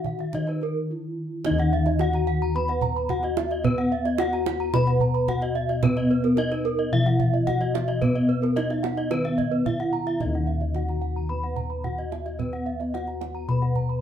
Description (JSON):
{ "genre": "Balinese gamelan", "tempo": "110 BPM", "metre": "4/4", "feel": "straight", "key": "Eb pelog", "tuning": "A4 = 440 Hz", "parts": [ { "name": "gamelan-type bronze metallophone", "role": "melody", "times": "0.0-14.0 s", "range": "Cb4 to Cb5", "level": "-27 LUFS", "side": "equal", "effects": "none" }, { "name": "gamelan-type bronze metallophone", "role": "accompaniment", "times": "0.0-14.0 s", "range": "Eb3 to Cb4", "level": "-33 LUFS", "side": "left 1 dB", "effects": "none" }, { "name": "gamelan-type bronze metallophone", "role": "arpeggios", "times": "0.0-14.0 s", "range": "Bb4 to Cb6", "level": "-31 LUFS", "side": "right 6 dB", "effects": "none" }, { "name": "gamelan-type bossed gongs", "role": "bass", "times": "0.0-14.0 s", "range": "Eb2 to Cb5", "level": "-27 LUFS", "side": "left 2 dB", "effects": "none" }, { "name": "kendang", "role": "percussion", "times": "0.0-13.9 s", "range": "none", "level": "-30 LUFS", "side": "right 6 dB", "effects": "none" }, { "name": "gamelan-type bronze metallophone", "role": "arpeggios", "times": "0.2-13.8 s", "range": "Cb5 to Cb6", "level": "-31 LUFS", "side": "left 1 dB", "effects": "none" } ], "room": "moderate large studio reverb, RT60 0.8 s", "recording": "band playing live in one room", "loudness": "-22 LUFS", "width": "side -9 dB against mid", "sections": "0.0-1.5 A section; 1.5-14.0 B section", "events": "break 0.6-1.5; drum fill 1.0-1.5", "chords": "none" }